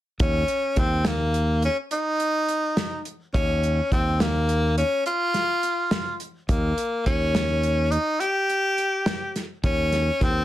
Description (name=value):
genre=progressive instrumental, band music in an uneven meter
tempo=210 BPM (eighths)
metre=11/8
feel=straight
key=Eb mixolydian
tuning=A4 = 439 Hz
part: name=edgy tenor saxophone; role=melody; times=0.2-10.4 s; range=Bb3 to G4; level=-24 LUFS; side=left 1 dB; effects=none
part: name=modern bright fingered electric bass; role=bass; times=0.2-10.4 s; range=Eb2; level=-24 LUFS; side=equal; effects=none
part: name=warm soul drum kit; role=drums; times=0.2-10.3 s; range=hi-hat, kick drum, snare drum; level=-26 LUFS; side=equal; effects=none
room=moderate studio ambience, RT60 0.5 s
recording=dense, heavily limited modern master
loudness=-21 LUFS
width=side -14 dB against mid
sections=0.2-10.4 A section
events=none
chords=none